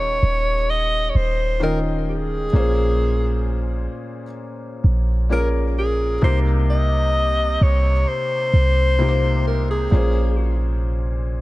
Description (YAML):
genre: contemporary R&B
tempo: 65 BPM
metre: 4/4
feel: straight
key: Bb dorian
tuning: A4 = 441 Hz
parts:
  - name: mellow alto saxophone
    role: melody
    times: 0.0-10.6 s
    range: Ab4 to Eb5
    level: -22 LUFS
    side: equal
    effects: ping-pong delay
  - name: felt-muted upright piano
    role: accompaniment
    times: 0.0-11.4 s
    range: Bb2 to G5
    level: -25 LUFS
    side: left 2 dB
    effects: none
  - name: clean 808-style bass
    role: bass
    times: 0.0-11.4 s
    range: Eb1 to C2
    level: -19 LUFS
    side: equal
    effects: none
room: studio ambience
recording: none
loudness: -17 LUFS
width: side -18 dB against mid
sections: 0.0-11.4 A section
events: none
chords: 0.0 Eb7; 2.5 Bbm7; 6.2 Cm7; 9.9 Bbm7